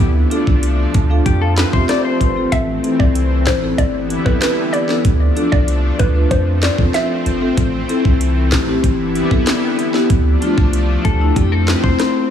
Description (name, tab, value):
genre	dancehall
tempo	95 BPM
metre	4/4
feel	straight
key	unclear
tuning	A4 = 438 Hz
part	lush unison pad	sustained chords	0.0-12.3 s	D3 to E4	-23 LUFS	equal	chorus, sidechain pumping
part	clean electric guitar	arpeggios	0.0-2.5, 11.0-12.3 s	G4 to D5	-23 LUFS	left 9 dB	wide subtle chorus
part	punchy sub bass	bass	0.0-12.0 s	G1 to F2	-17 LUFS	equal	none
part	island pop drum kit	drums	0.0-12.1 s	handclaps, hi-hat, kick drum, rim click, snare drum	-19 LUFS	equal	none
part	marimba with medium mallets	accompaniment	0.3-12.0 s	A3 to A5	-19 LUFS	left 2 dB	none
part	hollow square pluck	melody	2.5-7.4 s	B4 to E5	-22 LUFS	equal	chorus, digital delay
room	digital ambience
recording	small room ambience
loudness	-13 LUFS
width	side -9 dB against mid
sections	0.0-12.3 A section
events	marimba fill 0.6-2.5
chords	0.0 Dm; 1.3 F; 2.5 Am; 3.8 G6; 5.0 Dm; 6.3 F; 7.6 Am; 8.8 G6; 10.1 Dm; 11.4 F